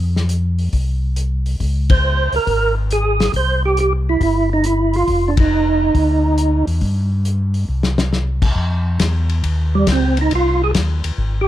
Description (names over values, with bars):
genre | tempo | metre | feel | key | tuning
soul jazz organ trio | 138 BPM | 4/4 | swing 68% on 8ths | unclear | A4 = 438 Hz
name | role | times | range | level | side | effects
mellow tonewheel organ | bass | 0.0-11.5 s | F1 to G2 | -18 LUFS | equal | chorus vibrato, slow rotary speaker
warm soul drum kit | drums | 0.2-11.3 s | crash cymbal, hi-hat, kick drum, ride cymbal, snare drum | -21 LUFS | left 2 dB | none
percussive tonewheel organ | melody | 1.9-6.7, 9.8-11.5 s | G3 to C5 | -17 LUFS | right 3 dB | slow rotary speaker, overdrive, chorus vibrato
room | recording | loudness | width
little or no reverb | dark, warm production | -15 LUFS | side -13 dB against mid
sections
0.0-8.6 A section; 8.6-11.5 B section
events
band accent 1.8, 5.3; drum fill 7.7-8.1; tonewheel organ solo 8.6-11.5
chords
0.0 F5; 1.6 Db5; 3.3 C5; 5.1 Ebsus2/F; 6.0 Dsus2; 6.8 N.C.; 8.6 Fm7